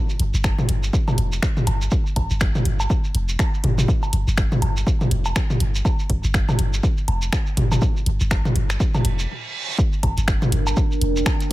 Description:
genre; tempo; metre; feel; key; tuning
minimal techno; 122 BPM; 4/4; swing 59% on 16ths; unclear; A4 = 440 Hz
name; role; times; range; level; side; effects
shekere; percussion; 0.1-11.5 s; none; -32 LUFS; right 2 dB; none
punchy sub bass; bass; 0.2-11.2 s; F1 to G1; -21 LUFS; equal; sidechain pumping
punchy analog drum machine; drums; 0.2-11.5 s; finger snaps, hi-hat; -28 LUFS; left 1 dB; studio reverb
electronic kick drum; drums; 0.4-11.4 s; none; -21 LUFS; equal; studio reverb
electronic woodblock and toms; percussion; 0.4-11.4 s; none; -24 LUFS; equal; studio reverb, digital delay
reverse cymbal; sound effects; 9.0-9.8 s; none; -29 LUFS; right 5 dB; none
deep dark ambient pad; texture; 10.4-11.5 s; D4 to G5; -26 LUFS; right 3 dB; chorus, built-in reverb, sidechain pumping
room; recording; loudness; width
little or no reverb; none; -18 LUFS; side -17 dB against mid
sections
0.0-9.8 A section; 9.8-11.5 B section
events
reverse cymbal 9.0-9.8; stop 9.3-9.8; drop 9.8-11.5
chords
0.0 Fsus2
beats
0.44 0.93 1.43 | 1.92 2.41 2.90 3.39 | 3.88 4.38 4.87 5.36 | 5.85 6.34 6.83 7.33 | 7.82 8.31 8.80 9.29 | 9.79 10.28 10.77 11.26

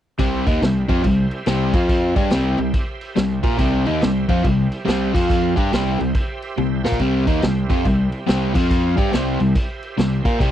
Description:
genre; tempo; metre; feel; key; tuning
blues rock power trio and southern rock; 141 BPM; 4/4; swing 64% on 8ths; C mixolydian; A4 = 441 Hz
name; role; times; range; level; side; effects
overdriven tonewheel organ; sustained chords; 0.2-10.5 s; F4 to F5; -33 LUFS; right 5 dB; chorus vibrato, slow rotary speaker
crunchy overdriven guitar; riff; 0.2-10.5 s; C3 to Bb4; -19 LUFS; left 1 dB; none
fuzz fingered electric bass; bass; 0.2-10.5 s; C2 to Bb2; -24 LUFS; equal; overdrive
vintage drum kit; drums; 0.2-10.5 s; crash cymbal, kick drum, snare drum, toms; -22 LUFS; equal; none
room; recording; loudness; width
little or no reverb; dry, close 1970s-style studio recording; -17 LUFS; side -11 dB against mid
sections
0.2-10.5 A section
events
drum fill 6.6-7.0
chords
0.2 C; 1.7 F5; 2.1 C; 5.1 F5; 5.5 C; 8.5 F5; 8.9 C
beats
| 0.20 0.62 1.04 1.47 | 1.89 2.32 2.74 3.17 | 3.59 4.02 4.44 4.87 | 5.29 5.72 6.15 6.57 | 7.00 7.43 7.85 8.28 | 8.71 9.13 9.56 9.98 | 10.41

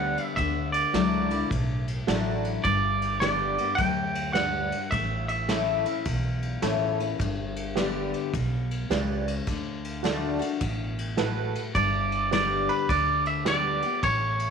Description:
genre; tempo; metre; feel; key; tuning
honky-tonk and classic country; 105 BPM; 4/4; swing 64% on 8ths; unclear; A4 = 440 Hz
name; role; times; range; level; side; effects
twangy electric guitar; melody; 0.0-6.0, 11.7-14.5 s; B4 to G5; -26 LUFS; right 3 dB; none
honky-tonk upright piano; accompaniment; 0.0-13.9 s; E4 to D5; -32 LUFS; right 12 dB; none
picked steel-string acoustic guitar; accompaniment; 0.0-14.5 s; E2 to G4; -30 LUFS; left 10 dB; none
upright bass; bass; 0.0-14.5 s; G1 to D2; -31 LUFS; right 1 dB; none
vintage brush drum kit; drums; 0.2-14.5 s; kick drum, ride cymbal, snare drum; -33 LUFS; right 1 dB; none
room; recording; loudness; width
light reverb, small room ambience; 1960s-style stereo with parts hard left and right; -24 LUFS; side -6 dB against mid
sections
0.0-14.5 A section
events
none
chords
0.4 Dadd9; 2.6 G; 4.9 A; 7.2 G; 9.5 D; 11.8 G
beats
| 0.37 0.94 1.51 2.08 | 2.65 3.21 3.78 4.35 | 4.92 5.49 6.06 6.63 | 7.20 7.77 8.34 8.91 | 9.48 10.05 10.62 11.19 | 11.76 12.32 12.89 13.46 | 14.03

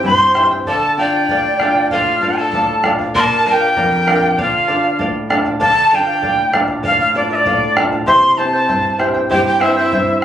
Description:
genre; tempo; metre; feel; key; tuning
andean folk, Andean ensemble; 97 BPM; 2/4; straight; D minor; A4 = 439 Hz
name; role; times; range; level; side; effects
breathy bright quena; melody; 0.0-10.2 s; D5 to C6; -14 LUFS; equal; plate reverb
breathy pan flute; second line; 0.0-5.0, 9.3-10.2 s; E4 to D5; -22 LUFS; equal; none
charango; accompaniment; 0.0-10.2 s; E4 to G5; -20 LUFS; right 1 dB; none
nylon-string guitar; accompaniment; 0.0-10.2 s; F2 to Bb4; -22 LUFS; equal; none
bombo; percussion; 0.0-10.2 s; none; -22 LUFS; right 1 dB; none
room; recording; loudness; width
moderate small room reverb, RT60 0.5 s; recorded on a phone in the room, club reverb; -12 LUFS; side -10 dB against mid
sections
0.0-5.6 A section; 5.6-10.2 A section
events
none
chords
0.0 C; 0.7 Dm; 3.1 Bb; 4.4 Dm; 8.1 C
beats
0.04 | 0.66 1.28 | 1.90 2.52 | 3.15 3.77 | 4.38 5.00 | 5.62 6.23 | 6.85 7.46 | 8.08 8.69 | 9.30 9.91

